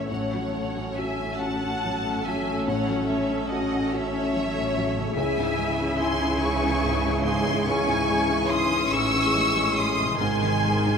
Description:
cinematic, emotional film score for orchestra; 48 BPM (dotted quarters); 6/8; rubato; C# harmonic minor; A4 = 439 Hz
rich studio violin section; melody; 0.0-11.0 s; E5 to E6; -30 LUFS; left 2 dB
rich studio violin section; second line; 0.0-11.0 s; C#5 to C#6; -28 LUFS; left 1 dB
felt-muted upright piano; accompaniment; 0.0-11.0 s; C#2 to F#4; -30 LUFS; left 2 dB
rich studio viola section; accompaniment; 0.0-11.0 s; D#3 to A4; -31 LUFS; right 1 dB
mellow French horn section; sustained chords; 0.0-11.0 s; D#3 to G#4; -31 LUFS; left 3 dB
concert harp; arpeggios; 0.0-11.0 s; A2 to G#4; -36 LUFS; left 5 dB
clear studio double bass section; bass; 0.0-11.0 s; G#1 to C#2; -32 LUFS; right 4 dB
rich studio cello section; bass; 0.0-11.0 s; G#2 to C#3; -32 LUFS; right 2 dB
wet scoring stage reverb, RT60 1.6 s; minimal, uncompressed stereo recording; -22 LUFS; side -6 dB against mid
0.0-11.0 A section
0.1 F#m/A; 5.2 C#m; 10.2 G#
| 0.10 1.39 | 2.66 3.92 | 5.17 6.42 | 7.66 8.92 | 10.20

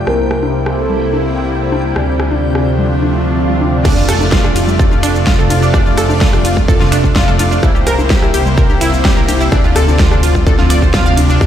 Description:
progressive house; 127 BPM; 4/4; straight; F major; A4 = 440 Hz
evolving wavetable pad; sustained chords; 0.0-11.5 s; C3 to E4; -20 LUFS; right 1 dB; ensemble chorus, built-in reverb, sidechain pumping
soft supersaw; stabs; 0.0-11.5 s; C3 to D5; -18 LUFS; left 2 dB; wide subtle chorus, sidechain pumping, low-pass filter, ping-pong delay
round analog bass; bass; 0.0-11.5 s; C2 to F2; -17 LUFS; equal; sidechain pumping
backwards swelling texture; texture; 0.0-3.9 s; G4 to G5; -30 LUFS; left 1 dB; built-in reverb, sidechain pumping
warm velvety synth lead; melody; 0.1-1.4 s; A4 to Bb4; -20 LUFS; equal; chorus, vintage 12-bit sampler grit, sidechain pumping, ping-pong delay
electronic rim click and congas; percussion; 0.1-11.5 s; -23 LUFS; left 2 dB; sidechain pumping on snare, sidechain pumping on perc
swell and impact; sound effects; 3.1-5.7 s; -24 LUFS; right 1 dB
analog pluck; arpeggios; 3.8-11.5 s; D4 to F5; -17 LUFS; right 1 dB; chorus, sidechain pumping, ping-pong delay
big-room dance drum kit; drums; 3.9-11.5 s; crash cymbal, finger snaps, hi-hat, ride cymbal, shaker, snare drum; -21 LUFS; right 1 dB
electronic kick drum; drums; 3.9-11.5 s; -13 LUFS; equal
light reverb; played on a big sound system in a bare room, large studio reverb; -10 LUFS; side -10 dB against mid
0.0-3.9 A section; 3.9-11.5 B section
swell 3.1-3.9; drop 3.9-11.5; impact 3.9-5.7
0.1 C7; 2.0 Dm7; 3.9 F6; 7.6 C7; 9.5 Dm7
| 0.07 0.54 1.02 1.49 | 1.96 2.43 2.91 3.38 | 3.85 4.32 4.79 5.27 | 5.74 6.21 6.68 7.16 | 7.63 8.10 8.57 9.05 | 9.52 9.99 10.46 10.94 | 11.41

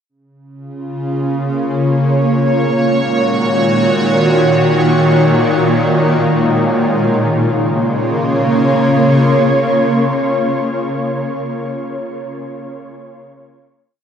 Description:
ambient; free time; Bb minor; A4 = 438 Hz
shimmering ambient pad; solo; 0.8-11.2 s; Bb2 to Db5; -12 LUFS; equal; chorus, built-in reverb, tape echo
wet huge ambient reverb, RT60 8.8 s; dark, warm production; -12 LUFS; side -8 dB against mid
0.1-7.0 A section; 7.0-10.5 final chord
0.1 Bbm; 1.9 Ab7sus4/Bb; 3.6 Gb6/Bb; 5.3 Dbadd9/Bb; 7.0 Bbm
free time

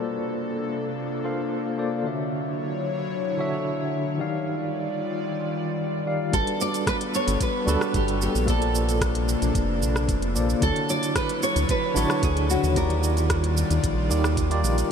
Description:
sunset chillout; 112 BPM; 4/4; straight; A4 = 440 Hz
tine electric piano; accompaniment; 0.0-14.9 s; D3 to F5; -27 LUFS; moving between left 4 dB and right 4 dB; fast tremolo, auto-pan, ping-pong delay
airy breathy pad; sustained chords; 0.0-14.9 s; C3 to D5; -30 LUFS; left 1 dB; chorus
nylon-string guitar; melody; 6.3-13.5 s; F#4 to D5; -28 LUFS; right 1 dB; wide subtle chorus, ping-pong delay
round analog bass; bass; 6.3-14.8 s; F1 to Eb2; -24 LUFS; equal
electronic kick drum; drums; 6.3-14.5 s; -28 LUFS; equal
smooth R&B drum kit; drums; 6.3-14.9 s; cabasa, hi-hat, rim click; -31 LUFS; right 1 dB; low-pass filter on hats, low-pass filter on perc, low-pass filter on snare
moderate huge ambient reverb, RT60 8.4 s; dreamy mix soaked in reverb; -22 LUFS; side -7 dB against mid
0.0-6.3 A section; 6.3-14.9 B section
0.0 Bbmaj9; 2.0 Dmaj9; 4.2 Ebmaj9; 6.3 Gmaj9; 8.5 Bbmaj9; 10.6 Dmaj9; 12.8 Ebmaj9
0.44 0.98 1.51 | 2.05 2.58 3.12 3.66 | 4.19 4.73 5.26 5.80 | 6.33 6.87 7.41 7.94 | 8.48 9.01 9.55 10.08 | 10.62 11.16 11.69 12.23 | 12.76 13.30 13.83 14.37 | 14.91

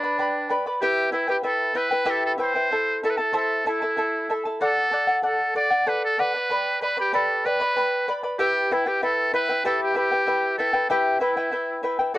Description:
andean folk, Andean ensemble; 63 BPM (dotted quarters); 6/8; straight; E minor; A4 = 440 Hz
trumpet with metal mute; melody; 0.0-12.2 s; D4 to D5; -23 LUFS; right 1 dB
charango; accompaniment; 0.0-12.2 s; E4 to B5; -24 LUFS; left 1 dB
light reverb; dry, close 1970s-style studio recording; -20 LUFS; side -16 dB against mid
0.0-12.1 A section
0.0 G; 0.8 Em; 2.7 Am; 4.6 D; 6.5 G; 8.4 Em
| 0.80 1.75 | 2.70 3.65 | 4.60 5.55 | 6.49 7.44 | 8.38 9.32 | 10.27 11.21 | 12.14

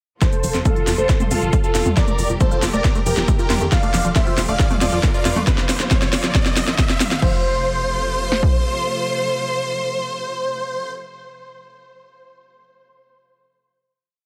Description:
uplifting trance; 137 BPM; 4/4; straight; F major; A4 = 440 Hz
big supersaw lead; melody; 0.2-10.9 s; F4 to F5; -26 LUFS; equal; cassette tape, sidechain pumping, low-pass filter, tape echo
dark grand piano; second line; 0.2-10.9 s; A4 to F5; -31 LUFS; equal; sidechain pumping, low-pass filter, tape echo
warm studio string section; sustained chords; 0.2-10.9 s; F2 to G4; -33 LUFS; equal; sidechain pumping
tight sequenced synth; arpeggios; 0.2-7.4 s; F3 to F4; -30 LUFS; equal; chorus, sidechain pumping, tape echo
punchy analog drum machine; drums; 0.2-8.5 s; kick drum, snare drum; -21 LUFS; equal
techno drum kit; drums; 0.2-7.3 s; crash cymbal, hi-hat, shaker, snare drum, toms; -25 LUFS; equal
riser; sound effects; 2.3-7.2 s; -33 LUFS; equal
plucky analog bass; bass; 0.4-8.5 s; F1 to F2; -27 LUFS; equal; sidechain pumping
little or no reverb; -19 LUFS; mono
0.2-7.2 build; 7.2-10.7 final chord
build-up 0.2-7.2; drum fill 0.2-7.2; filter sweep on supersaw synth 0.2-5.5; filter sweep on synth arpeggio sound 0.2-5.5; riser 2.3-7.2
0.2 F; 2.0 Gm/F; 3.7 Dm/F; 5.5 Bb/F; 7.2 F
| 0.21 0.65 1.09 1.53 | 1.97 2.40 2.84 3.28 | 3.72 4.16 4.59 5.03 | 5.47 5.91 6.35 6.79 | 7.22 7.66 8.10 8.54 | 8.97 9.41 9.85 10.29

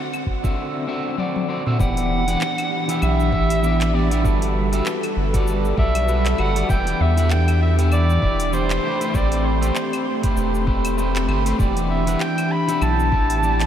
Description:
sunset chillout; 98 BPM; 4/4; swing 57% on 16ths; A4 = 440 Hz
warm soprano saxophone; melody; 0.0-13.7 s; C5 to B5; -25 LUFS; equal; analog delay
airy breathy pad; sustained chords; 0.0-13.7 s; D3 to B4; -25 LUFS; right 1 dB; chorus
smooth R&B drum kit; drums; 0.1-13.7 s; claves, handclaps, hi-hat, shaker, toms; -31 LUFS; left 1 dB
electronic kick drum; drums; 0.3-13.3 s; -22 LUFS; equal
electric guitar at the edge of break-up; accompaniment; 0.4-13.7 s; D3 to F#5; -25 LUFS; equal; auto-pan, analog delay
round analog bass; bass; 1.8-13.7 s; E1 to E2; -20 LUFS; equal
moderate huge ambient reverb, RT60 8.0 s; dreamy mix soaked in reverb; -18 LUFS; side -10 dB against mid
0.0-1.8 A section; 1.8-13.7 B section
drum fill 1.2-1.8
0.0 D7; 1.8 Em7; 4.2 Gmaj9; 6.7 Em7; 8.8 Am9; 11.6 Em7
0.57 1.18 | 1.79 2.41 3.02 3.63 | 4.24 4.86 5.47 6.08 | 6.69 7.31 7.92 8.53 | 9.14 9.76 10.37 10.98 | 11.59 12.20 12.82 13.43

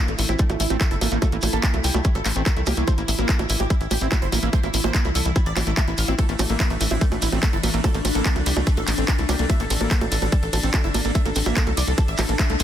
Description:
psychedelic trance; 145 BPM; 4/4; straight; A phrygian; A4 = 442 Hz
supersaw stab; melody; 0.0-12.6 s; A3 to F5; -29 LUFS; right 1 dB; phaser, sidechain pumping, ping-pong delay
evolving wavetable pad; sustained chords; 0.1-12.6 s; E3 to E4; -30 LUFS; left 1 dB; chorus, built-in reverb, phaser, sidechain pumping
screaming distorted acid line; riff; 0.0-12.6 s; G3 to E4; -30 LUFS; moving between left 10 dB and right 9 dB; distortion, chorus, auto-pan, sidechain pumping, ping-pong delay
tight sequencer bass; bass; 0.1-12.6 s; G1 to C2; -24 LUFS; equal
drum and bass drum kit; drums; 0.1-12.6 s; bongos, handclaps, hi-hat, ride cymbal; -26 LUFS; right 2 dB; overdrive
shekere; percussion; 0.1-12.6 s; -36 LUFS; right 4 dB
resonant blip pluck; second line; 0.3-2.1, 6.9-8.8 s; G3 to C4; -40 LUFS; left 4 dB
electronic kick drum; drums; 0.4-12.5 s; -21 LUFS; equal; overdrive
digital ambience; dense, heavily limited modern master; -19 LUFS; side -10 dB against mid
0.0-12.6 A section
band accent 12.4
0.0 A5
0.39 0.81 | 1.22 1.63 2.05 2.46 | 2.88 3.29 3.70 4.12 | 4.53 4.95 5.36 5.77 | 6.19 6.60 7.01 7.43 | 7.84 8.26 8.67 9.08 | 9.50 9.91 10.32 10.74 | 11.15 11.56 11.98 12.39

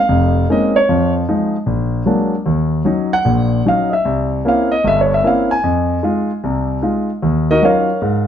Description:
jazz; 152 BPM; 4/4; swing 64% on 8ths; A4 = 443 Hz
dark concert grand piano; solo; 0.0-8.3 s; F1 to Ab5; -13 LUFS; equal
moderate studio reverb, RT60 0.8 s; -13 LUFS; side -9 dB against mid
0.0-8.3 A section
0.0 Bbm11; 0.9 Fm7; 1.7 Bb7b13; 2.5 Ebm7; 4.0 C7b9; 5.6 Fm7; 7.2 Ebm9
0.09 0.49 | 0.88 1.28 1.68 2.07 | 2.47 2.86 3.26 3.65 | 4.05 4.45 4.84 5.24 | 5.63 6.03 6.42 6.82 | 7.21 7.61 8.01

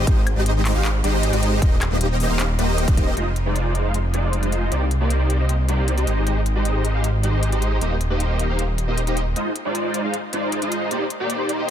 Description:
future bass; 155 BPM; 4/4; half-time; F dorian; A4 = 440 Hz
supersaw chords; riff; 0.0-11.7 s; Ab3 to F5; -23 LUFS; equal; ensemble chorus, sidechain pumping, low-pass filter, tape echo
wide detuned saw bass; bass; 0.0-9.3 s; Eb1 to C2; -21 LUFS; equal; chorus, sidechain pumping
electronic kick drum; drums; 0.1-3.1 s; -18 LUFS; equal
trap drum kit; drums; 0.1-11.6 s; handclaps, hi-hat, woodblock; -30 LUFS; left 2 dB
light reverb; dense, heavily limited modern master; -19 LUFS; side -10 dB against mid
0.0-3.2 A section; 3.2-9.4 B section; 9.4-11.7 C section
drop 0.0-3.2; build-up 9.4-11.7
0.0 Abmaj7; 1.6 Eb6; 3.2 Fm7; 4.7 Cm9; 6.1 Abmaj7; 7.8 Eb6; 9.4 Fm7; 10.9 Cm9
| 0.07 0.46 0.85 1.23 | 1.62 2.01 2.40 2.78 | 3.17 3.56 3.94 4.33 | 4.72 5.10 5.49 5.88 | 6.27 6.65 7.04 7.43 | 7.81 8.20 8.59 8.97 | 9.36 9.75 10.14 10.52 | 10.91 11.30 11.69

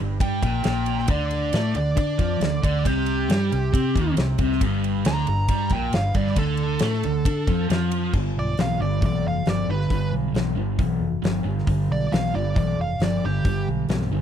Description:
blues rock power trio and southern rock; 136 BPM; 4/4; straight; G mixolydian; A4 = 441 Hz
sludgy distorted guitar; riff; 0.0-14.2 s; G2 to D4; -24 LUFS; left 1 dB; overdrive
vintage muted fingered electric bass; bass; 0.0-14.2 s; F1 to D3; -26 LUFS; equal
nasal lead guitar with a parked wah; melody; 0.2-13.7 s; G4 to Bb5; -28 LUFS; right 3 dB; overdrive
huge arena drum kit; drums; 0.2-14.1 s; crash cymbal, hi-hat, kick drum, ride cymbal, snare drum; -26 LUFS; equal
little or no reverb; dry, close 1970s-style studio recording; -20 LUFS; side -9 dB against mid
0.0-8.1 A section; 8.1-14.2 B section
lead electric guitar solo 0.0-8.1
0.0 G5; 1.1 D5; 2.9 C5; 4.6 G5; 6.4 D5; 8.1 G7
0.21 0.66 | 1.10 1.54 1.98 2.42 | 2.86 3.30 3.74 4.18 | 4.62 5.06 5.50 5.94 | 6.38 6.82 7.26 7.70 | 8.14 8.59 9.03 9.47 | 9.91 10.35 10.79 11.24 | 11.68 12.12 12.57 13.01 | 13.45 13.89

